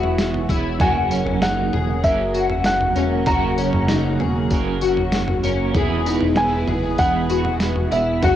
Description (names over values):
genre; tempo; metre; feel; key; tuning
dream pop; 97 BPM; 4/4; straight; F# mixolydian; A4 = 439 Hz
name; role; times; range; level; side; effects
felt-muted upright piano; melody; 0.0-8.4 s; E5 to A#5; -23 LUFS; right 1 dB; cassette tape, tape echo, shimmer reverb
electric guitar at the edge of break-up; accompaniment; 0.0-8.4 s; F#2 to A#4; -25 LUFS; right 8 dB; tremolo, lush chorus, cassette tape, shimmer reverb
phased analog pad; sustained chords; 0.0-8.4 s; C#3 to C#5; -27 LUFS; equal; phaser, chorus, cassette tape, shimmer reverb
fingerpicked twelve-string acoustic guitar; arpeggios; 0.0-8.4 s; C#4 to G#4; -24 LUFS; left 8 dB; ensemble chorus, cassette tape, tape echo, shimmer reverb
chorused synth bass; bass; 0.0-8.4 s; E1 to F#1; -25 LUFS; equal; none
crisp 8-bit digital drum machine; drums; 0.0-8.4 s; kick drum, snare drum, tambourine, toms; -24 LUFS; equal; none
room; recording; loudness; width
moderate spring reverb, RT60 2.5 s; home recording on cassette; -17 LUFS; side -11 dB against mid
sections
0.0-8.4 A section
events
none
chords
0.0 E; 0.8 F#; 5.8 E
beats
0.19 | 0.80 1.42 2.04 2.66 | 3.28 3.90 4.51 5.13 | 5.75 6.37 6.99 7.61 | 8.23